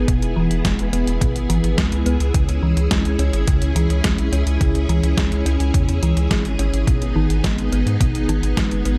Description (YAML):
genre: synthwave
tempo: 106 BPM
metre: 4/4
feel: straight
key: C# minor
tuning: A4 = 440 Hz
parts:
  - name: string machine, full ensemble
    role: sustained chords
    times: 0.0-9.0 s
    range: B3 to G#4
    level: -28 LUFS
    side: equal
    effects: ensemble chorus, sidechain pumping
  - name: round analog bass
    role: bass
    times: 0.0-9.0 s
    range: E1 to G#2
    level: -22 LUFS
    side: equal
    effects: sidechain pumping
  - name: thumb-piano-like synth pluck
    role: arpeggios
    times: 0.1-9.0 s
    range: B2 to C#4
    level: -26 LUFS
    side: equal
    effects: chorus, cassette tape, delay
  - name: detuned 8-bit digital drum machine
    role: drums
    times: 0.1-9.0 s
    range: hi-hat, snare drum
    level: -28 LUFS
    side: equal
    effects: none
  - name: electronic kick drum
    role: drums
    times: 0.1-8.7 s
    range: none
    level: -23 LUFS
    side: equal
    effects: none
room: light reverb, digital ambience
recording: dark, warm production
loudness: -19 LUFS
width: mono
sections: 0.0-9.0 A section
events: none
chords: 0.1 E; 2.3 C#m; 6.9 G#m